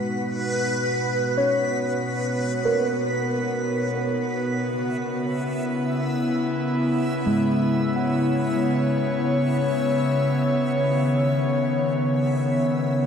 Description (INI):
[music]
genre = ambient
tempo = 70 BPM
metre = 3/4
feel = straight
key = unclear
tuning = A4 = 440 Hz
[part]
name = airy breathy pad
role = sustained chords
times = 0.0-13.1 s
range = B2 to F#5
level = -22 LUFS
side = left 1 dB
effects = chorus
[part]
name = muted felt-like synth keys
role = arpeggios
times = 0.0-13.1 s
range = G#3 to F#5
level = -28 LUFS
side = equal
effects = chorus, diffuse ambient delay
[part]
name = backwards swelling texture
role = texture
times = 0.0-13.1 s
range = B4 to B6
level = -30 LUFS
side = equal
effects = built-in reverb
[sound]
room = wet huge ambient reverb, RT60 8.6 s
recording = dark, warm production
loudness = -21 LUFS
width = side -7 dB against mid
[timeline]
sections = 0.0-13.1 A section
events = fade-in on analog synth pad 0.0-13.1; fade-out on synth keys 0.0-13.1; fade-out on synth texture 0.0-13.1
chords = 0.0 B; 4.6 C#m7